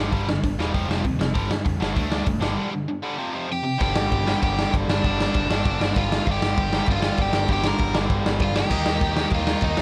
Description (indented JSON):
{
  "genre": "punk rock",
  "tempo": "196 BPM",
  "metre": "4/4",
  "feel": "straight",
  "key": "G minor",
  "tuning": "A4 = 440 Hz",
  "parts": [
    { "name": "biting overdriven guitar", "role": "riff", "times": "0.0-9.8 s", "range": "F2 to Eb4", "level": "-29 LUFS", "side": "equal", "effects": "none" },
    { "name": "overdriven picked electric bass", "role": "bass", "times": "0.0-9.8 s", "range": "E1 to G2", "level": "-30 LUFS", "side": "equal", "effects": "none" },
    { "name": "raw garage drum kit", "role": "drums", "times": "0.1-9.8 s", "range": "crash cymbal, hi-hat, kick drum, ride cymbal, snare drum", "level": "-26 LUFS", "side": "equal", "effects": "none" },
    { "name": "biting lead guitar", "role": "melody", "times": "3.5-9.8 s", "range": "D4 to Bb5", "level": "-29 LUFS", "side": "equal", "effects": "overdrive" }
  ],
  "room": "little or no reverb",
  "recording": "none",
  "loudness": "-23 LUFS",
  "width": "mono",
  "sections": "0.0-3.8 A section; 3.8-9.8 B section",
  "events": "break 2.6-3.8",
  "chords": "0.0 G5; 0.7 F5; 1.4 G5; 2.0 D5; 2.4 G5; 3.2 F5; 3.8 G5; 8.7 Eb"
}